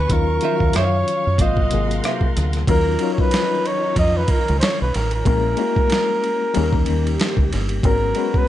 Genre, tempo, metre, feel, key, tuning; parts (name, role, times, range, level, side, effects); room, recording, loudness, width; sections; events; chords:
R&B, neo-soul; 93 BPM; 4/4; swing 58% on 16ths; Eb minor; A4 = 440 Hz
warm flugelhorn; melody; 0.0-8.5 s; Bb4 to Eb5; -22 LUFS; right 1 dB; slapback echo, plate reverb
reed electric piano; accompaniment; 0.0-8.5 s; C3 to Db5; -24 LUFS; left 10 dB; fast tremolo, plate reverb
warm studio string section; sustained chords; 0.0-8.5 s; Eb3 to Db6; -31 LUFS; right 1 dB; plate reverb
deep dub fingered electric bass; bass; 0.0-8.1 s; G1 to Gb2; -20 LUFS; right 1 dB
boom bap sampler-style drum kit; drums; 0.1-8.5 s; hi-hat, kick drum, ride cymbal, rim click, snare drum; -21 LUFS; right 1 dB
nylon-string guitar; second line; 0.4-2.3 s; Gb4 to F5; -27 LUFS; right 5 dB; plate reverb
light reverb; nothing above 11.0 kHz; -16 LUFS; side -12 dB against mid
0.0-2.7 A section; 2.7-8.5 B section
0.1 Ebm9; 1.4 Ab13; 2.7 Ebm9; 5.3 Bbm7b5; 6.5 Eb7; 7.8 Abm11